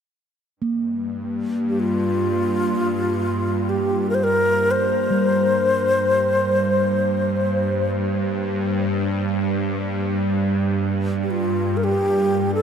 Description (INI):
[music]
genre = world meditative, free-time meditation music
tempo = free time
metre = none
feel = none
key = G minor pentatonic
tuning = A4 = 440 Hz
[part]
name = bowed-like drone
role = drone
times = 0.9-12.6 s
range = G2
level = -23 LUFS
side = right 1 dB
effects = built-in reverb
[part]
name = bronze singing bowl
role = texture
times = 0.6-12.6 s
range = G3 to Bb3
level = -26 LUFS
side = right 1 dB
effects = none
[part]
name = breathy bright xiao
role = melody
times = 1.7-12.6 s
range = F4 to C5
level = -21 LUFS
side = left 1 dB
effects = shimmer reverb, diffuse ambient delay
[sound]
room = wet huge ambient reverb, RT60 8.1 s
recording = none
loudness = -19 LUFS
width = side -7 dB against mid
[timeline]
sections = 0.6-12.6 A section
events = none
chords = none